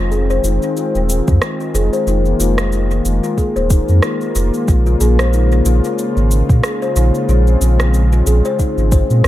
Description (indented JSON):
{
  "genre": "organic downtempo",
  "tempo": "92 BPM",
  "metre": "4/4",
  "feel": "swing 56% on 16ths",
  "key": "F minor",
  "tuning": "A4 = 445 Hz",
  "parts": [
    { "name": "warm analog pad", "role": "sustained chords", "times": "0.0-9.3 s", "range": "Db3 to F4", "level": "-21 LUFS", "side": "left 2 dB", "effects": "wide subtle chorus, sidechain pumping" },
    { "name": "kalimba", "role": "arpeggios", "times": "0.0-9.1 s", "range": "Eb4 to C5", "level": "-20 LUFS", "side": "left 3 dB", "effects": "low-pass filter, analog delay" },
    { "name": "warm sub bass", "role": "bass", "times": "0.0-9.3 s", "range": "Eb1 to Bb2", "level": "-13 LUFS", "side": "equal", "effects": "sidechain pumping" },
    { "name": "electronic cabasa and rim click", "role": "drums", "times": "0.1-9.3 s", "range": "none", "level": "-23 LUFS", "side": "right 1 dB", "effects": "studio ambience, dub echo" },
    { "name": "electronic kick drum", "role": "drums", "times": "1.3-9.1 s", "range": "none", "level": "-14 LUFS", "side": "equal", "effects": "studio ambience" }
  ],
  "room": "light reverb, digital ambience",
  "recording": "echo-heavy mix",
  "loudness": "-12 LUFS",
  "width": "side -14 dB against mid",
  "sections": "0.0-9.3 A section",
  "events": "filter sweep on kalimba 0.0-9.3",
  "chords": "0.0 Fm7; 4.7 Bbm7"
}